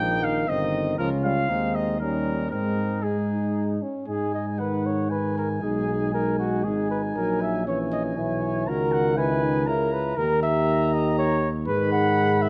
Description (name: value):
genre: classical, brass quintet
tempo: 118 BPM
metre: 3/4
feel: straight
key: Ab major, G# minor from 4.1 s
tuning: A4 = 437 Hz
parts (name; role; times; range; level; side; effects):
- clear trumpet; melody; 0.0-12.5 s; Ab4 to B5; -33 LUFS; equal; none
- dark trumpet; second line; 0.0-12.5 s; Eb4 to F#5; -30 LUFS; equal; none
- clear French horn; accompaniment; 0.0-12.5 s; Ab3 to G#4; -32 LUFS; equal; none
- clear trombone; accompaniment; 0.0-12.5 s; C#3 to Ab3; -32 LUFS; equal; none
- warm tuba; bass; 0.0-12.5 s; G1 to G#2; -30 LUFS; equal; none
room: moderate recital hall reverb, RT60 1.6 s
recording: close, detailed microphones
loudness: -25 LUFS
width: mono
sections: 0.0-4.1 A section; 4.1-12.5 B section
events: none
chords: 0.0 Ab (rootless); 1.0 Bbm/Db; 1.5 Ab/Eb; 2.0 Eb7; 2.5 Ab; 4.1 G#5; 5.6 G#m/B; 7.2 A#dim; 8.7 A#dim/C#; 10.2 D#; 11.7 G#m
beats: 0.48 | 0.98 1.49 2.00 | 2.52 3.04 3.56 | 4.08 4.59 5.11 | 5.62 6.13 6.65 | 7.16 7.66 8.17 | 8.68 9.18 9.68 | 10.18 10.68 11.18 | 11.68 12.17